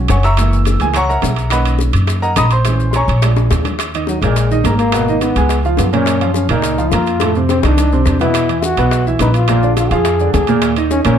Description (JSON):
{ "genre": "Afro-Cuban jazz", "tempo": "211 BPM", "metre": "4/4", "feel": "straight", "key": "Eb minor from 3.8 s", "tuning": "A4 = 440 Hz", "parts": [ { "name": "warm concert grand piano", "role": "accompaniment", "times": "0.0-11.2 s", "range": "A2 to E6", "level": "-17 LUFS", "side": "right 4 dB", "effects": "none" }, { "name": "upright bass", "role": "bass", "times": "0.0-11.2 s", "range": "F#1 to F#2", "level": "-16 LUFS", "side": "equal", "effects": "none" }, { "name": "bongos", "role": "percussion", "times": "0.1-11.2 s", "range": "none", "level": "-24 LUFS", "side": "left 8 dB", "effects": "none" }, { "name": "maracas", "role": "percussion", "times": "0.1-11.2 s", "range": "none", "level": "-31 LUFS", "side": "left 6 dB", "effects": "none" }, { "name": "timbales", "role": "percussion", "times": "0.1-11.2 s", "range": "none", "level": "-24 LUFS", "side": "right 8 dB", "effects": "none" }, { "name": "clear trombone", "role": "second line", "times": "4.1-11.2 s", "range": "Gb3 to Ab4", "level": "-18 LUFS", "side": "left 4 dB", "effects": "slapback echo" } ], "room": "light reverb", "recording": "dark, warm production", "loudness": "-12 LUFS", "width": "side -8 dB against mid", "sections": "0.0-3.8 A section; 3.8-11.2 A section", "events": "grand piano solo 0.0-3.8; drum fill 3.4-3.8, 7.2-8.3; trombone solo 3.8-11.2", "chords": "0.4 F#7; 1.5 Bmaj7; 2.7 A#m7b5; 3.2 A#7; 3.8 Ebsus4; 4.9 Abmadd9; 5.5 Db; 6.1 Gbmaj7; 7.2 F6; 8.3 Esus2; 9.5 Bb7; 10.6 Eb5" }